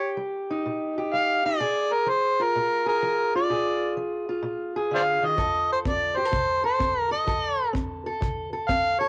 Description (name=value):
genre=acoustic country blues, solo or duo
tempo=127 BPM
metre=4/4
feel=swing 67% on 8ths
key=Bb mixolydian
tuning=A4 = 442 Hz
part: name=overdriven harmonica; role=melody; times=0.0-9.1 s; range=Bb4 to F5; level=-26 LUFS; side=equal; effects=cassette tape
part: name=fingerpicked steel-string acoustic guitar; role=accompaniment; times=0.0-9.1 s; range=Bb2 to A4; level=-31 LUFS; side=equal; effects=cassette tape
part: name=kick drum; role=drums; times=5.4-8.8 s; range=none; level=-34 LUFS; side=equal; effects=cassette tape
room=small room ambience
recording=home recording on cassette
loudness=-25 LUFS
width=mono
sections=0.0-9.1 A section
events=none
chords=0.0 Eb; 1.6 Bb7; 5.4 F7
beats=0.18 0.65 1.12 | 1.59 2.07 2.54 3.01 | 3.48 3.96 4.43 4.90 | 5.38 5.85 6.32 6.80 | 7.27 7.74 8.22 8.69